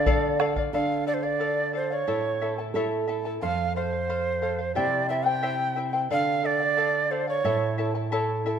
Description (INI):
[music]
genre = andean folk, Andean ensemble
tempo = 89 BPM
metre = 2/4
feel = straight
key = D minor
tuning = A4 = 439 Hz
[part]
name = breathy bright large quena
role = melody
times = 0.0-7.9 s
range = C5 to G5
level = -26 LUFS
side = right 3 dB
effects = none
[part]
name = charango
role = accompaniment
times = 0.0-8.6 s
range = E4 to A5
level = -28 LUFS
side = left 4 dB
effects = none
[part]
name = nylon-string guitar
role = accompaniment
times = 0.0-8.6 s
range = F2 to A4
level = -30 LUFS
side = right 5 dB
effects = none
[part]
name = bombo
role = percussion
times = 0.1-0.7 s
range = none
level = -27 LUFS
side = equal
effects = none
[sound]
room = moderate concert hall reverb, RT60 2.3 s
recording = minimal, uncompressed stereo recording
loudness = -24 LUFS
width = side -8 dB against mid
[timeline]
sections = 0.7-8.6 A section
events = nylon-string guitar fill 2.4-3.4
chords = 0.0 Dm; 2.1 A; 3.4 F; 4.8 C; 6.1 Dm; 7.5 A